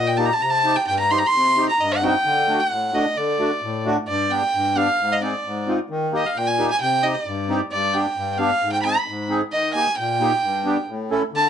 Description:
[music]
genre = klezmer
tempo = 132 BPM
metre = 2/4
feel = straight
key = D phrygian dominant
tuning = A4 = 441 Hz
[part]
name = clear violin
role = melody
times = 0.0-11.5 s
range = D5 to C6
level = -20 LUFS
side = right 1 dB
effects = none
[part]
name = accordion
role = accompaniment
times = 0.0-11.5 s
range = G2 to A4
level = -23 LUFS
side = left 1 dB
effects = light tremolo tuning
[sound]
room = moderate studio reverb, RT60 0.5 s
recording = dark, warm production, nothing above 10.9 kHz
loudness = -18 LUFS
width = side -8 dB against mid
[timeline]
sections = 0.0-4.1 A section; 4.1-11.3 B section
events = none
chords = 0.4 Cm; 2.3 D; 4.1 G; 5.0 Ab; 5.9 Eb; 6.8 Cm; 7.7 G; 8.6 Ab; 9.5 Eb; 10.4 G; 10.9 A

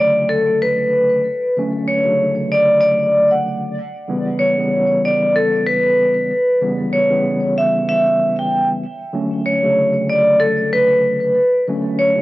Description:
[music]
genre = hip hop, boom-bap hip-hop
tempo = 95 BPM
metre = 4/4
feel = swing 57% on 16ths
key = B minor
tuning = A4 = 441 Hz
[part]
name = vibraphone with medium hard mallets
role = melody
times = 0.0-12.2 s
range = A4 to G5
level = -15 LUFS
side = equal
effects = high-pass filter, low-pass filter, tape echo
[part]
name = mellow tine electric piano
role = accompaniment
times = 0.0-12.2 s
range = C#3 to C#4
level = -21 LUFS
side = equal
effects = medium stereo tremolo, cassette tape, high-pass filter, low-pass filter
[sound]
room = light reverb, studio reverb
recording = dry, gritty hardware recording, nothing above 11.0 kHz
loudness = -14 LUFS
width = side -18 dB against mid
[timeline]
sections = 0.0-9.1 A section; 9.1-12.2 B section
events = none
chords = 0.0 Bm7; 4.1 C#m7b5; 9.1 Bm7

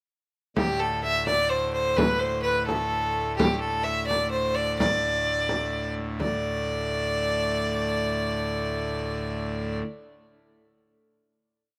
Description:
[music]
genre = medieval dance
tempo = 85 BPM (dotted quarters)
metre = 6/8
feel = straight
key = unclear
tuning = A4 = 440 Hz
[part]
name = bright fiddle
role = melody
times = 0.6-9.8 s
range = G4 to E5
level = -28 LUFS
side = equal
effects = none
[part]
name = pipe organ, full organ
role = drone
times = 0.6-9.8 s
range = D2 to A2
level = -33 LUFS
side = equal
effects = none
[part]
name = frame drum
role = percussion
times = 0.6-6.4 s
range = none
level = -28 LUFS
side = equal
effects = none
[sound]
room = light reverb, studio reverb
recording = rough home demo mix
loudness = -26 LUFS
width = mono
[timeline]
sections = 0.6-6.2 A section; 6.2-9.0 final chord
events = none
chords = none

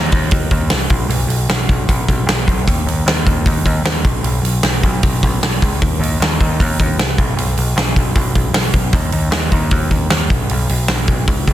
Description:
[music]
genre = punk rock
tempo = 153 BPM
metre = 4/4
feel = straight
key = unclear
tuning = A4 = 440 Hz
[part]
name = growling picked electric bass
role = bass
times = 0.0-11.5 s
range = Cb2 to Eb2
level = -18 LUFS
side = equal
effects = overdrive
[part]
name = big rock drum kit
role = drums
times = 0.1-11.5 s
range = hi-hat, kick drum, snare drum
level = -15 LUFS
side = equal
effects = soft clipping on snare
[sound]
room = little or no reverb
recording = dense, heavily limited modern master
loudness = -13 LUFS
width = side -13 dB against mid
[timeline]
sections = 0.0-11.5 A section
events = none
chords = none

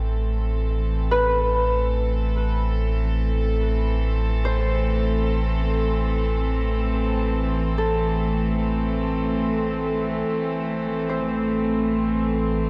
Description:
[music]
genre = ambient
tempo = free time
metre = none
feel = none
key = A minor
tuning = A4 = 440 Hz
[part]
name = warm chamber string section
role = sustained chords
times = 0.0-12.7 s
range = E3 to A4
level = -27 LUFS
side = equal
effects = none
[part]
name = warm sub bass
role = bass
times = 0.0-12.7 s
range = A1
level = -26 LUFS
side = equal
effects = none
[part]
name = Celtic harp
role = arpeggios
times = 1.1-12.7 s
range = A4 to C5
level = -30 LUFS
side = equal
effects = diffuse ambient delay
[sound]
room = wet lush hall reverb, RT60 2.6 s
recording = worn, warbling old tape, cassette tape, warbly pitch drift, nothing above 10.5 kHz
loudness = -23 LUFS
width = mono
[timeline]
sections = 0.0-12.7 A section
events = fade-in on string section 0.0-12.7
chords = 0.0 Am

